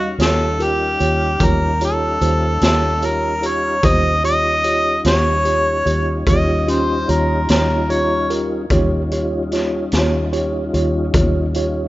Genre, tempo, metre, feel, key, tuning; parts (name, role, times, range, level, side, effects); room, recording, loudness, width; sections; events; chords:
slow blues; 49 BPM (dotted quarters); 12/8; straight; Eb mixolydian; A4 = 440 Hz
clear harmonica; melody; 0.0-6.2 s; Gb4 to Eb5; -18 LUFS; equal; overdrive
mellow tine electric piano; accompaniment; 0.0-11.9 s; Db4 to Db5; -22 LUFS; right 2 dB; medium stereo tremolo
tonewheel organ; sustained chords; 0.0-11.9 s; G3 to F5; -25 LUFS; left 2 dB; slow rotary speaker, chorus vibrato
vintage muted fingered electric bass; bass; 0.0-11.9 s; Eb2; -20 LUFS; equal
raw garage drum kit; drums; 0.2-11.7 s; hi-hat, kick drum, snare drum; -21 LUFS; equal
warm harmonica; second line; 6.3-8.3 s; Bb4 to Eb5; -22 LUFS; equal; overdrive
light reverb, small room ambience; rough home demo mix, nothing above 7.6 kHz; -15 LUFS; side -17 dB against mid
0.0-11.9 A section
0.0 Eb9